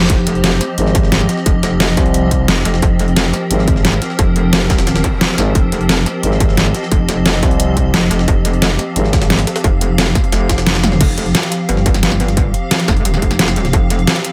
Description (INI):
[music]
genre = dark technical drum and bass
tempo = 176 BPM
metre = 4/4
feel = straight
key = F minor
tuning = A4 = 439 Hz
[part]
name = swarming drone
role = sustained chords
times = 0.0-14.3 s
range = F3 to F5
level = -22 LUFS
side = equal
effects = built-in reverb, sidechain pumping
[part]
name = metallic wobble bass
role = bass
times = 0.0-14.1 s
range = Eb1 to G1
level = -19 LUFS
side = equal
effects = chorus, overdrive
[part]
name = reverse cymbal and zap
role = sound effects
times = 0.0-0.1, 5.0-5.1 s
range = none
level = -29 LUFS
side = equal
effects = none
[part]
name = dubstep drum kit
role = drums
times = 0.1-14.3 s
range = crash cymbal, hi-hat, snare drum, toms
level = -18 LUFS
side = equal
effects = none
[part]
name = electronic kick drum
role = drums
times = 0.1-13.8 s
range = none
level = -18 LUFS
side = equal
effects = distortion
[part]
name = jungle sampler-style drum kit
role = drums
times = 0.1-14.3 s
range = hi-hat, snare drum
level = -27 LUFS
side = equal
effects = high-pass filter on hats, high-pass filter on snare
[part]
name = growling FM bass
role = bass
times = 0.8-9.5 s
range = Ab1 to C2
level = -18 LUFS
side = equal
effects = none
[sound]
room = digital ambience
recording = none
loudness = -14 LUFS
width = mono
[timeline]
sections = 0.0-11.0 A section; 11.0-14.3 A section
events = drop 0.0-11.0, 11.0-14.3; band accent 10.7; drum fill 10.8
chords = 0.0 F5